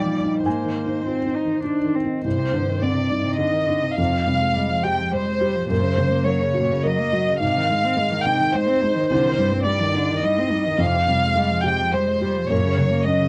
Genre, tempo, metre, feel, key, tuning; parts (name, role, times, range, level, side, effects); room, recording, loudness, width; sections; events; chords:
neoclassical piano and strings; 105 BPM; 3/4; rubato; A4 = 440 Hz
muted chamber violin section; melody; 0.0-13.3 s; C5 to G5; -25 LUFS; equal
muted cello; second line; 0.0-13.3 s; G2 to Eb4; -28 LUFS; equal
felt-muted upright piano; accompaniment; 0.0-13.3 s; C2 to Bb5; -25 LUFS; equal
light reverb; dark, warm production; -21 LUFS; mono
0.0-2.3 A section; 2.3-13.3 B section
0.5 Abadd9; 2.3 Cmadd9; 4.0 Fmadd9; 5.7 Gb; 7.4 Ab; 9.1 Cmadd9; 10.8 Fmadd9; 12.5 Gb